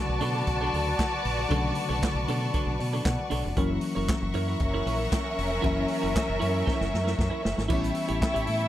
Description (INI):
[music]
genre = disco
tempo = 116 BPM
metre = 4/4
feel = straight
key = B minor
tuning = A4 = 440 Hz
[part]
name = dark studio violin section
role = second line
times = 0.0-8.7 s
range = C#4 to A5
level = -30 LUFS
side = left 1 dB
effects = none
[part]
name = reed electric piano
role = accompaniment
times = 0.0-8.7 s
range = C#3 to F#5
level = -33 LUFS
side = left 4 dB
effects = overdrive
[part]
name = bright studio string section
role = sustained chords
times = 0.0-8.7 s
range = A4 to C#6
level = -35 LUFS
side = left 1 dB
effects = none
[part]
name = clean electric guitar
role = accompaniment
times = 0.1-8.6 s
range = D4 to E5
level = -35 LUFS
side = right 6 dB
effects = none
[part]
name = deep dub fingered electric bass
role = bass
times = 0.1-8.7 s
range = E#1 to B2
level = -30 LUFS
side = equal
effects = none
[part]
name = vintage drum kit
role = drums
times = 0.2-8.7 s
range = crash cymbal, handclaps, hi-hat, kick drum, snare drum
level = -31 LUFS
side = equal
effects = none
[sound]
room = light reverb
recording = none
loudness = -24 LUFS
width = side -12 dB against mid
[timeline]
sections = 0.0-7.7 A section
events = reed electric piano fill 2.5-3.6; drum fill 6.7-7.7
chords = 0.0 Bm9; 3.6 F#7; 7.7 A7